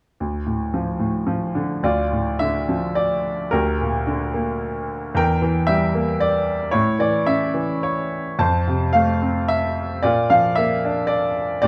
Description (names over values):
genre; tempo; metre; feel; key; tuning
classical, lyrical solo piano; 103-116 BPM; 3/4; rubato; D minor; A4 = 439 Hz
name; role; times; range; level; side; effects
bright grand piano; solo; 0.2-11.7 s; D2 to A5; -21 LUFS; equal; none
room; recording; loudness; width
moderate small room reverb, RT60 0.6 s; dark, warm production; -21 LUFS; mono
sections
0.2-1.8 A section; 1.8-11.7 B section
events
none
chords
0.2 Dm; 3.5 Gm/D; 5.1 Edim; 6.7 A; 8.4 F; 10.0 Bb